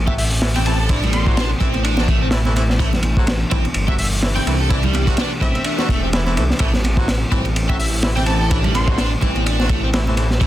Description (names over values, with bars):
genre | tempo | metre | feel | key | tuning
breakbeat, breaks | 126 BPM | 4/4 | swing 56% on 16ths | A dorian | A4 = 440 Hz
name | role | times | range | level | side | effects
tonewheel organ | sustained chords | 0.0-10.5 s | E3 to D4 | -29 LUFS | left 2 dB | none
dark detuned saw bass | bass | 0.0-10.5 s | E1 to C2 | -20 LUFS | equal | none
plucky unison lead | melody | 0.1-9.1 s | E5 to C6 | -28 LUFS | equal | phaser, telephone sound, dub echo
overdriven electric guitar | riff | 0.1-10.5 s | G3 to A4 | -25 LUFS | equal | dub echo
bright horn section | stabs | 0.1-10.5 s | E3 to F#4 | -28 LUFS | right 1 dB | dub echo
crunchy breakbeat drum kit | drums | 0.1-10.5 s | hi-hat, kick drum, ride cymbal, snare drum | -19 LUFS | equal | none
congas | percussion | 0.1-10.3 s | none | -29 LUFS | right 4 dB | none
room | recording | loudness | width
small room ambience | dense, heavily limited modern master | -15 LUFS | side -14 dB against mid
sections
0.0-10.5 A section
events
none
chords
0.0 Am